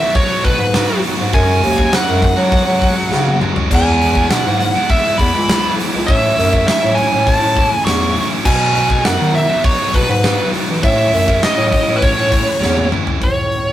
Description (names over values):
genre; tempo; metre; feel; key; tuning
quiet-loud alternative rock; 101 BPM; 4/4; straight; A lydian; A4 = 440 Hz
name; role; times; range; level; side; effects
biting lead guitar; melody; 0.0-13.7 s; B4 to C#6; -17 LUFS; right 1 dB; overdrive
scooped high-gain guitar; riff; 0.0-13.2 s; A2 to F#4; -22 LUFS; right 4 dB; distortion
thick fuzz guitar; riff; 0.0-13.2 s; A2 to F#4; -23 LUFS; left 5 dB; distortion
huge arena drum kit; drums; 0.2-13.7 s; crash cymbal, hi-hat, kick drum, snare drum, toms; -17 LUFS; equal; none
mellow bass clarinet; bass; 0.4-13.7 s; C#2 to F#3; -18 LUFS; equal; none
room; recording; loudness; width
light reverb; rough rehearsal-room recording; -12 LUFS; side -12 dB against mid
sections
0.0-13.2 A section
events
drum fill 3.1-3.7, 12.6-13.2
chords
0.0 B; 1.3 F#sus2; 3.7 E; 6.1 A; 8.5 B; 10.8 A